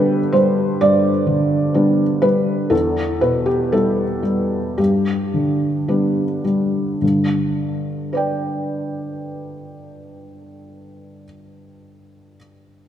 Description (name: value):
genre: neoclassical minimalist piano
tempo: 52-65 BPM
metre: 4/4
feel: rubato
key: G major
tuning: A4 = 441 Hz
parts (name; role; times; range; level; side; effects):
- felt-muted upright piano; solo; 0.0-12.9 s; E2 to G5; -16 LUFS; equal; none
room: wet concert hall reverb, RT60 2.6 s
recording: none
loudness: -16 LUFS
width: side -10 dB against mid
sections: 0.0-7.0 A section; 7.0-11.5 B section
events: slowing down 0.0-7.0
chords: 0.0 G; 2.7 Em; 4.8 G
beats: 0.82 1.76 | 2.72 3.72 4.78 5.88 | 7.02 8.12 9.24 10.35